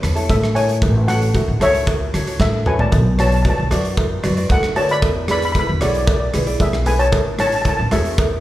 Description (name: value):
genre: calypso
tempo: 114 BPM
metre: 4/4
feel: straight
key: F# minor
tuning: A4 = 440 Hz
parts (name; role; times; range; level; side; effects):
- ukulele; accompaniment; 0.0-8.2 s; E4 to E5; -26 LUFS; equal; slapback echo
- upright bass; bass; 0.0-8.4 s; A1 to A2; -19 LUFS; equal; none
- gated 80s drum kit; drums; 0.0-8.3 s; hi-hat, kick drum, rim click, snare drum, toms; -21 LUFS; equal; none
- steel pan; melody; 0.3-8.4 s; F#4 to B5; -20 LUFS; left 1 dB; slapback echo
- cowbell; percussion; 0.3-8.3 s; none; -27 LUFS; right 2 dB; slapback echo
room: light reverb, studio reverb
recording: live gig heard through the venue's PA, club reverb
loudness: -15 LUFS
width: side -14 dB against mid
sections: 0.0-8.4 A section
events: drum fill 2.4-2.9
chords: 0.0 A; 0.8 F#m7/A; 2.9 Bm7; 5.0 E7; 7.1 A6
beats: 0.30 | 0.82 1.35 1.87 2.40 | 2.92 3.45 3.97 4.50 | 5.03 5.55 6.08 6.60 | 7.13 7.66 8.18